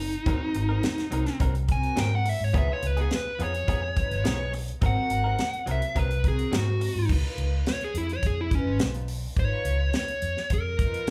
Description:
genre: straight-eighth soul blues.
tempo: 106 BPM.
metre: 4/4.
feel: straight.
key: Db mixolydian.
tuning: A4 = 440 Hz.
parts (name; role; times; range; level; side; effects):
dark smooth lead guitar; melody; 0.0-11.1 s; Db4 to Ab5; -32 LUFS; equal; overdrive.
vintage muted fingered electric bass; bass; 0.0-11.1 s; Gb1 to Ab2; -30 LUFS; equal; none.
tight funk drum kit; drums; 0.1-11.1 s; crash cymbal, hi-hat, kick drum, snare drum; -31 LUFS; equal; none.
dark studio string section; sustained chords; 0.3-11.1 s; Cb4 to Cb5; -41 LUFS; equal; none.
direct-recorded clean electric guitar; stabs; 0.3-6.8 s; F3 to Bb4; -39 LUFS; equal; none.
room: moderate large studio reverb, RT60 0.9 s.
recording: band playing live in one room.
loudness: -26 LUFS.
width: mono.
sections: 0.0-7.1 A section; 7.1-11.1 B section.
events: lead electric guitar solo 7.1-11.1.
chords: 0.0 Ab9; 2.5 Db9; 4.8 Ab9; 7.1 Db9.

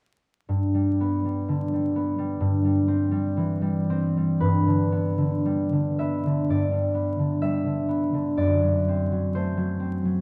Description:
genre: classical, solo harp piece.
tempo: 52-65 BPM.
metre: 4/4.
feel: rubato.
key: G major.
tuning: A4 = 439 Hz.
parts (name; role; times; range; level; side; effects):
concert harp; solo; 0.5-10.2 s; F#2 to E5; -24 LUFS; equal; none.
room: moderate recital hall reverb, RT60 1.3 s.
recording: close, detailed microphones, vinyl crackle.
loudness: -24 LUFS.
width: mono.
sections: 0.5-4.4 A section; 4.4-10.2 B section.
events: none.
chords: 0.5 G; 2.4 C/G; 4.4 G; 8.4 D7/F#.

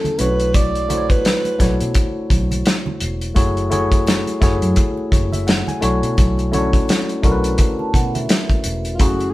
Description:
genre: lush 1970s-style soul.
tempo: 85 BPM.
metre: 4/4.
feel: swing 58% on 16ths.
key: unclear.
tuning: A4 = 440 Hz.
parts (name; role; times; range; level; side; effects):
breathy alto saxophone; melody; 0.0-1.8, 8.9-9.3 s; E#4 to D5; -21 LUFS; right 1 dB; none.
tine electric piano; accompaniment; 0.0-9.3 s; A3 to G#5; -21 LUFS; left 2 dB; none.
congas; percussion; 0.0-9.3 s; none; -30 LUFS; right 3 dB; none.
warm soul drum kit; drums; 0.1-9.3 s; hi-hat, kick drum, snare drum; -17 LUFS; equal; none.
vintage muted fingered electric bass; bass; 0.2-9.3 s; E1 to B2; -22 LUFS; equal; none.
vibraphone with soft mallets; texture; 7.8-8.9 s; E5 to A5; -28 LUFS; right 5 dB; none.
room: moderate studio reverb, RT60 0.8 s.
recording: band playing live in one room.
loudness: -15 LUFS.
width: side -17 dB against mid.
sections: 0.0-9.3 A section.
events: none.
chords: 0.2 Bm11; 3.4 F#m9; 5.8 Bm11.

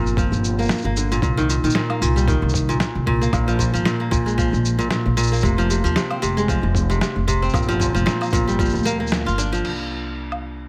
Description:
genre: folktronica.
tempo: 114 BPM.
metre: 4/4.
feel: swing 56% on 16ths.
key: unclear.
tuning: A4 = 440 Hz.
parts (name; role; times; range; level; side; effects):
kora; arpeggios; 0.0-10.7 s; Bb2 to F4; -24 LUFS; equal; digital delay.
upright bass; bass; 0.0-10.7 s; F1 to Eb2; -25 LUFS; equal; none.
lo-fi sampler-style drum kit; drums; 0.1-10.4 s; crash cymbal, shaker, snare drum, woodblock; -29 LUFS; equal; overdrive.
electronic kick drum; drums; 0.2-8.7 s; none; -26 LUFS; equal; overdrive.
room: light reverb.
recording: none.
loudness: -20 LUFS.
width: mono.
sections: 0.0-9.6 A section; 9.6-10.7 B section.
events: band accent 9.1.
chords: 0.0 Gm7; 1.2 Cm7; 3.3 Bb5; 5.4 Fm; 7.5 Gm7; 9.6 N.C..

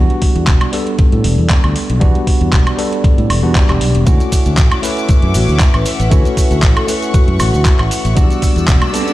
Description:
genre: nu-disco, nu disco.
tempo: 117 BPM.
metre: 4/4.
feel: swing 54% on 16ths.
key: unclear.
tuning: A4 = 440 Hz.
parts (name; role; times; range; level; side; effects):
bright tine electric piano; accompaniment; 0.0-9.1 s; G3 to B4; -19 LUFS; equal; medium stereo tremolo, analog delay.
fingered electric bass; bass; 0.0-8.8 s; E1 to A2; -15 LUFS; equal; sidechain pumping.
pop drum kit; drums; 0.1-9.1 s; handclaps, hi-hat, woodblock; -21 LUFS; right 1 dB; none.
electronic kick drum; drums; 0.2-8.8 s; none; -11 LUFS; equal; none.
rich studio string section; sustained chords; 4.1-9.1 s; C#4 to E6; -23 LUFS; left 3 dB; sidechain pumping.
maracas; percussion; 4.1-9.1 s; none; -29 LUFS; right 2 dB; none.
vibraphone with soft mallets; melody; 5.4-7.6 s; F#4 to B4; -23 LUFS; left 1 dB; analog delay.
riser; sound effects; 8.3-9.1 s; none; -24 LUFS; right 3 dB; none.
room: digital ambience.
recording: played on a big sound system in a bare room, stone room reverb.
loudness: -10 LUFS.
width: side -16 dB against mid.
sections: 0.0-9.1 A section.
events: riser 8.3-9.1.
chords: 0.0 Em9; 4.1 Dmaj9; 8.2 Em9.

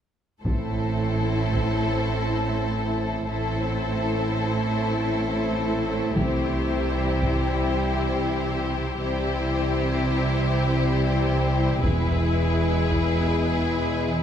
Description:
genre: cinematic, epic orchestral film score.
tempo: 84 BPM.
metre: 4/4.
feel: straight.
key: A minor.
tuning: A4 = 439 Hz.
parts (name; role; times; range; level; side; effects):
warm symphonic violin section; melody; 0.4-14.2 s; B4 to C5; -33 LUFS; left 3 dB; none.
rich symphonic violin section; second line; 0.4-14.2 s; G4 to A4; -31 LUFS; left 4 dB; none.
warm symphonic viola section; accompaniment; 0.4-14.2 s; E4; -32 LUFS; left 1 dB; none.
bright trombone section; sustained chords; 0.4-14.2 s; E3 to A3; -31 LUFS; right 3 dB; none.
mellow French horn section; sustained chords; 0.4-14.2 s; B3 to E4; -31 LUFS; left 8 dB; none.
rich symphonic cello section; bass; 0.4-14.2 s; E2 to C3; -28 LUFS; right 2 dB; none.
rich symphonic double bass section; bass; 0.4-14.2 s; E1 to C2; -28 LUFS; right 2 dB; none.
taiko ensemble; drums; 0.4-1.9, 6.2-7.6, 11.8-13.2 s; none; -28 LUFS; equal; none.
room: moderate scoring stage reverb, RT60 1.9 s.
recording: none.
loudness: -22 LUFS.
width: side -9 dB against mid.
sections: 0.4-14.2 A section.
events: build-up 0.4-14.2.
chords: 0.4 Am; 6.2 C; 11.8 E.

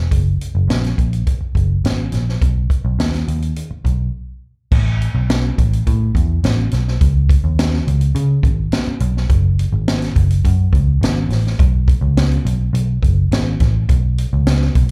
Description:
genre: uptempo 1960s-style soul.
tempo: 105 BPM.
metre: 4/4.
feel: straight.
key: unclear.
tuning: A4 = 441 Hz.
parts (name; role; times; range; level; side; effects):
vintage muted picked electric bass; bass; 0.0-14.9 s; F#1 to C#3; -18 LUFS; equal; none.
swinging big-band drum kit; drums; 0.1-14.9 s; crash cymbal, hi-hat, kick drum, snare drum; -20 LUFS; equal; none.
room: little or no reverb.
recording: live gig heard through the venue's PA, club reverb.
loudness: -17 LUFS.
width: mono.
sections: 0.0-4.7 A section; 4.7-14.9 B section.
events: break 4.1-4.7.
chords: none.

